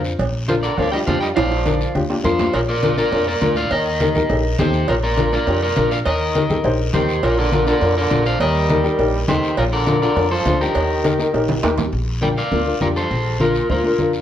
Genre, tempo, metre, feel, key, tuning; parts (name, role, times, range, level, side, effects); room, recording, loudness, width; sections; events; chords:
latin, cumbia; 204 BPM; 4/4; straight; Bb major; A4 = 440 Hz
dark upright piano; accompaniment; 0.0-14.2 s; D4 to C5; -21 LUFS; left 3 dB
upright bass; bass; 0.0-14.2 s; Bb1 to F2; -23 LUFS; equal
guiro; percussion; 0.0-14.2 s; -35 LUFS; left 3 dB
congas; percussion; 0.2-14.1 s; -25 LUFS; left 1 dB
cowbell and timbales; percussion; 0.2-11.8 s; -26 LUFS; right 4 dB
electric guitar at the edge of break-up; melody; 0.5-14.1 s; F4 to G5; -21 LUFS; equal; spring reverb, slapback echo
growling trombone; second line; 0.5-1.9, 6.9-11.7 s; Bb2 to G3; -24 LUFS; right 3 dB
light reverb; worn, warbling old tape, cassette tape, warbly pitch drift; -16 LUFS; side -10 dB against mid
0.0-2.5 A section; 2.5-11.9 B section; 11.9-14.2 A section
drum fill 1.4-2.5, 11.5-11.9
0.0 Bb; 3.7 Eb; 4.9 Bb; 6.1 Eb; 7.2 Bb; 8.4 Eb; 9.6 Bb; 10.8 Eb; 11.9 Bb